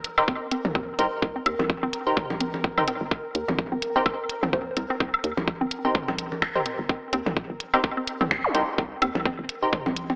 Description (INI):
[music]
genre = minimal techno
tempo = 127 BPM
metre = 4/4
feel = swing 57% on 16ths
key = C minor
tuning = A4 = 438 Hz
[part]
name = garage drum kit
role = drums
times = 0.0-10.1 s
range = finger snaps, hi-hat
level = -31 LUFS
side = equal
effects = none
[part]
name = bubbling stepped-filter texture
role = texture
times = 0.0-10.2 s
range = Bb4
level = -38 LUFS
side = equal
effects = chorus, built-in reverb, sidechain pumping
[part]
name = wavetable chord stab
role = stabs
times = 0.2-9.7 s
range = Eb4 to C5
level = -30 LUFS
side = equal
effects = tape echo
[part]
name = electronic woodblock, toms and congas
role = percussion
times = 0.2-10.2 s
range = none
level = -32 LUFS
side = equal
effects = tape echo
[part]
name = hollow square pluck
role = riff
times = 0.3-10.1 s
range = C4 to C5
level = -33 LUFS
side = equal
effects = chorus, phaser, vintage 12-bit sampler grit, sidechain pumping, tape echo
[part]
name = electronic kick drum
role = drums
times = 0.3-9.8 s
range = none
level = -28 LUFS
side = equal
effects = none
[part]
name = hollow knocking FM bass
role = bass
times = 0.6-10.2 s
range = G1 to Eb2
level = -34 LUFS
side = equal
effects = tube saturation, sidechain pumping
[part]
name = zap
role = sound effects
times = 8.4-8.5 s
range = none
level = -32 LUFS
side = equal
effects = none
[sound]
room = moderate lush hall reverb, RT60 1.8 s, digital ambience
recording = AM radio sound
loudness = -26 LUFS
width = mono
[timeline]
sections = 0.0-10.2 A section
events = none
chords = 0.0 Cm7